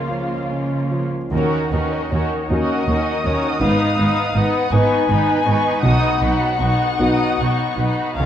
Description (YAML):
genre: cinematic, emotional film score for orchestra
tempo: 53 BPM (dotted quarters)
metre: 6/8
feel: uneven beats, rubato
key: unclear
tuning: A4 = 440 Hz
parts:
  - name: muted symphonic violin section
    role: melody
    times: 0.0-8.3 s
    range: E#5 to D#6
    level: -27 LUFS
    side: left 1 dB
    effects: none
  - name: muted symphonic violin section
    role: second line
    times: 0.0-8.3 s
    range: D#4 to B4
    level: -25 LUFS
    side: equal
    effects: none
  - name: muted symphonic viola section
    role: accompaniment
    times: 0.0-8.3 s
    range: G#3 to D#4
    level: -25 LUFS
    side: right 2 dB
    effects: none
  - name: warm concert grand piano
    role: accompaniment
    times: 0.0-8.3 s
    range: B1 to B4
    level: -23 LUFS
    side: left 1 dB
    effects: none
  - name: muted studio cello section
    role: bass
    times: 0.0-8.3 s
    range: D#2 to C#3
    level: -24 LUFS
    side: right 2 dB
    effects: none
  - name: muted violin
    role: melody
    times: 1.3-8.3 s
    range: A#4 to G#5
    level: -23 LUFS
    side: left 6 dB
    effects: none
  - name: muted symphonic double bass section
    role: bass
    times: 1.3-8.2 s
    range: G#1 to D#2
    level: -23 LUFS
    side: right 2 dB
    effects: none
room: moderate scoring stage reverb, RT60 1.4 s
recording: worn, warbling old tape, cassette tape, warbly pitch drift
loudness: -16 LUFS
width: side -10 dB against mid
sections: 0.0-1.3 A section; 1.3-8.3 B section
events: none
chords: 0.0 C#6; 1.3 D#m7; 3.6 G#m; 5.8 B